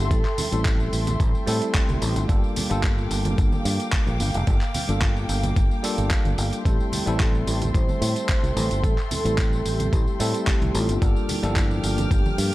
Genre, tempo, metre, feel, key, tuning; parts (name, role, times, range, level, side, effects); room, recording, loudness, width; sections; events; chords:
nu-disco, nu disco; 110 BPM; 4/4; straight; G dorian; A4 = 439 Hz
vibraphone with hard mallets; melody; 0.0-1.7, 6.7-12.5 s; E4 to C5; -32 LUFS; right 1 dB; analog delay
bell-like tine electric piano; accompaniment; 0.0-12.5 s; F3 to A4; -29 LUFS; equal; fast stereo tremolo, analog delay
warm studio string section; sustained chords; 0.0-12.5 s; Bb3 to F6; -33 LUFS; left 1 dB; sidechain pumping
fingered electric bass; bass; 0.0-12.5 s; F1 to A2; -25 LUFS; equal
dusty soul sampler-style drum kit; drums; 0.1-12.5 s; handclaps, hi-hat, tambourine; -30 LUFS; equal; overdrive
electronic kick drum; drums; 0.1-12.2 s; -22 LUFS; equal; overdrive
congas; percussion; 0.4-12.4 s; -32 LUFS; right 2 dB
studio reverb; dark, warm production; -20 LUFS; side -17 dB against mid
0.0-12.5 A section
0.0 Am7; 2.3 Gm7; 6.7 Am7; 11.0 Gm7